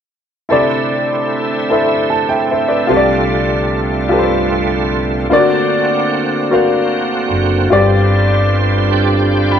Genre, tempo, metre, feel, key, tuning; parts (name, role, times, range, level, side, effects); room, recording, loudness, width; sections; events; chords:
gospel; 50 BPM (dotted quarters); 6/8; straight; C major; A4 = 440 Hz
warm upright piano; accompaniment; 0.5-9.6 s; G2 to B5; -14 LUFS; left 2 dB
bright tonewheel organ; sustained chords; 0.5-9.6 s; C2 to G4; -17 LUFS; right 3 dB; slow rotary speaker, overdrive, chorus vibrato
fingered electric bass; bass; 5.3-9.6 s; F#1 to D2; -17 LUFS; equal
moderate stone room reverb, RT60 0.9 s; band playing live in one room; -12 LUFS; side -8 dB against mid
0.5-9.6 A section
0.5 C69; 2.9 F69/C; 5.3 D7alt; 7.7 G7sus4